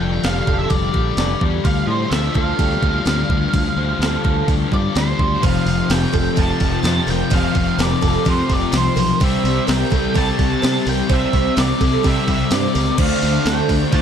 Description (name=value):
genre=rock, shoegaze and dream pop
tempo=127 BPM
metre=4/4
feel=straight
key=F major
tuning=A4 = 440 Hz
part: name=octave-fuzz lead guitar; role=melody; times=0.0-14.0 s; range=C5 to A5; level=-24 LUFS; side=right 2 dB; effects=distortion, tape echo
part: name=picked twelve-string acoustic guitar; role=arpeggios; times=0.0-14.0 s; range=F4 to D5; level=-26 LUFS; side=right 11 dB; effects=analog chorus, tape echo
part: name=thick fuzz guitar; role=riff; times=0.0-14.0 s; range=F2 to C5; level=-21 LUFS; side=left 8 dB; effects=distortion, analog chorus
part: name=twangy electric guitar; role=riff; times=0.0-14.0 s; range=C3 to A4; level=-34 LUFS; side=right 11 dB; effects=none
part: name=growling fingered electric bass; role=bass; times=0.0-14.0 s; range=F1 to C3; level=-22 LUFS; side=right 1 dB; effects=overdrive
part: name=clean 12-bit digital drum machine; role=drums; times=0.2-14.0 s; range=crash cymbal, hi-hat, kick drum, snare drum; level=-21 LUFS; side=right 1 dB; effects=none
part: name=crunchy overdriven guitar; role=riff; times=5.4-14.0 s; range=F2 to D4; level=-25 LUFS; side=right 2 dB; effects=none
room=light reverb, digital ambience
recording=dark, warm production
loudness=-15 LUFS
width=side -8 dB against mid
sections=0.0-5.4 A section; 5.4-14.0 B section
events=none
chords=0.0 F69; 1.7 Dm7; 5.4 Fsus2; 9.2 Cadd9; 13.0 Dm7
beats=0.24 0.71 1.18 | 1.65 2.12 2.60 3.07 | 3.54 4.01 4.48 4.96 | 5.43 5.90 6.37 6.84 | 7.32 7.79 8.26 8.73 | 9.20 9.68 10.15 10.62 | 11.09 11.56 12.04 12.51 | 12.98 13.45 13.92